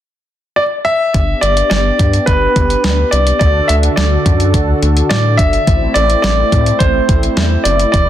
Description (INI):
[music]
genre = synth-pop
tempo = 106 BPM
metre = 4/4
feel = straight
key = G major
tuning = A4 = 440 Hz
[part]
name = clear concert grand piano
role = melody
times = 0.6-8.1 s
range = B4 to E5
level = -14 LUFS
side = equal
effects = ping-pong delay
[part]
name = brassy analog pad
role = sustained chords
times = 1.1-8.1 s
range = D3 to B4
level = -19 LUFS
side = right 1 dB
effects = chorus
[part]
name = rubbery square bass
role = bass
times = 1.1-8.1 s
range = E1 to A2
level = -15 LUFS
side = equal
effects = none
[part]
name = clean 12-bit digital drum machine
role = drums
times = 1.1-8.1 s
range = hi-hat, kick drum, snare drum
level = -15 LUFS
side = equal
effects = none
[sound]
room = light reverb, digital ambience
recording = dense, heavily limited modern master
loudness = -10 LUFS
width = side -11 dB against mid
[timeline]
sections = 0.0-1.1 A section; 1.1-8.1 B section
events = none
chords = 0.0 N.C.; 1.1 G; 3.4 D; 5.7 Am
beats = 0.01 0.58 | 1.14 1.71 2.28 2.84 | 3.41 3.98 4.54 5.11 | 5.67 6.24 6.80 7.37 | 7.94